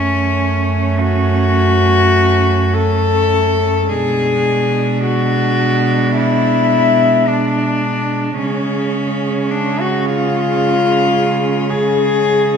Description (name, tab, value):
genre	classical, lyrical piece for cello ensemble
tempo	45-55 BPM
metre	4/4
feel	rubato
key	F# minor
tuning	A4 = 440 Hz
part	rich cello	melody	0.0-12.6 s	C#4 to A4	-16 LUFS	left 4 dB	none
part	warm cello	second line	0.0-12.6 s	C#4 to D4	-23 LUFS	right 8 dB	none
part	warm cello	accompaniment	0.0-12.6 s	G#3 to A3	-22 LUFS	right 2 dB	none
part	rich cello	bass	0.0-12.6 s	F#2 to C#3	-18 LUFS	right 2 dB	none
room	wet scoring stage reverb, RT60 1.7 s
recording	recorded in a church or concert hall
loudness	-13 LUFS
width	side -7 dB against mid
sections	0.0-12.6 A section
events	none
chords	0.0 F#m; 3.9 G#dim/B; 8.4 C#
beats	0.36 1.60 2.74 | 3.88 5.04 6.17 7.29 | 8.39 9.51 10.60 11.69